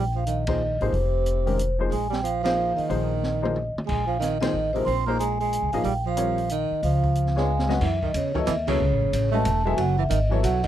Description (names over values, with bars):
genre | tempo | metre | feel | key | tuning
modal jazz | 183 BPM | 3/4 | swing 63% on 8ths | Bb dorian | A4 = 440 Hz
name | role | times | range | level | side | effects
vibraphone with soft mallets | melody | 0.0-10.7 s | C5 to C6 | -27 LUFS | left 1 dB | none
breathy tenor saxophone | second line | 0.0-10.7 s | C3 to C4 | -29 LUFS | right 13 dB | none
upright bass | bass | 0.0-10.7 s | E1 to F#2 | -26 LUFS | equal | none
open jazz drum kit | drums | 0.3-10.7 s | crash cymbal, hi-hat, kick drum, ride cymbal, snare drum, toms | -33 LUFS | equal | none
warm upright piano | accompaniment | 0.5-10.7 s | Eb3 to E5 | -29 LUFS | left 6 dB | none
room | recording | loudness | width
little or no reverb | dry, close 1970s-style studio recording | -22 LUFS | side -12 dB against mid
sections
0.0-7.8 A section; 7.8-10.7 B section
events
band accent 0.4, 2.4, 4.4, 8.6; drum fill 3.2-3.9, 7.5-7.8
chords
0.0 Bb9sus4; 6.8 Db7; 7.8 F#m9